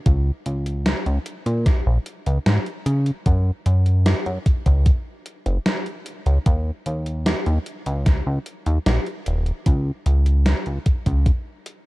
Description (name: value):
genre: vaporwave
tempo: 75 BPM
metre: 4/4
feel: straight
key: unclear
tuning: A4 = 440 Hz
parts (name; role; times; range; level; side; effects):
- chorused synth bass; bass; 0.1-11.3 s; Eb1 to Db3; -19 LUFS; equal; none
- electronic kick drum; drums; 0.1-11.4 s; none; -17 LUFS; equal; overdrive
- gated 80s digital drum machine; drums; 0.1-11.8 s; hi-hat, snare drum; -26 LUFS; equal; gated reverb, gated reverb snare, overdrive
room: little or no reverb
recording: dark, warm production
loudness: -19 LUFS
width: side -20 dB against mid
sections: 0.0-11.9 A section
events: none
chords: none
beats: | 0.06 0.86 1.66 2.46 | 3.26 4.06 4.86 5.66 | 6.46 7.26 8.06 8.86 | 9.66 10.46 11.26